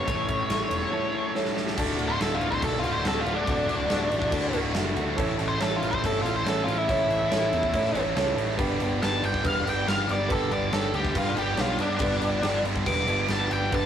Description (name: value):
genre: classic rock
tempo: 141 BPM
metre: 4/4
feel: straight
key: D major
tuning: A4 = 438 Hz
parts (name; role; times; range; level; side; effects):
- octave-fuzz lead guitar; melody; 0.0-13.9 s; D4 to D6; -27 LUFS; left 1 dB; distortion
- overdriven electric guitar; riff; 0.0-13.9 s; D2 to A4; -30 LUFS; equal; none
- warm grand piano; accompaniment; 0.1-13.9 s; B3 to A5; -32 LUFS; right 2 dB; none
- fuzz picked electric bass; bass; 0.1-13.9 s; D1 to A2; -31 LUFS; equal; overdrive
- huge arena drum kit; drums; 0.1-13.8 s; crash cymbal, kick drum, ride cymbal, snare drum; -30 LUFS; equal; none
room: moderate small room reverb, RT60 0.5 s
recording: rough rehearsal-room recording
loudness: -23 LUFS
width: side -9 dB against mid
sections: 0.0-1.8 A section; 1.8-13.9 B section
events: drum fill 1.4-1.8; lead electric guitar solo 1.8-13.9; grand piano fill 4.3-5.2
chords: 0.1 A; 1.8 D; 5.2 A; 8.6 G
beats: | 0.07 0.50 0.93 1.35 | 1.77 2.20 2.63 3.05 | 3.48 3.90 4.33 4.75 | 5.18 5.60 6.03 6.46 | 6.88 7.31 7.74 8.16 | 8.59 9.02 9.45 9.87 | 10.30 10.73 11.15 11.58 | 12.01 12.44 12.86 13.29 | 13.72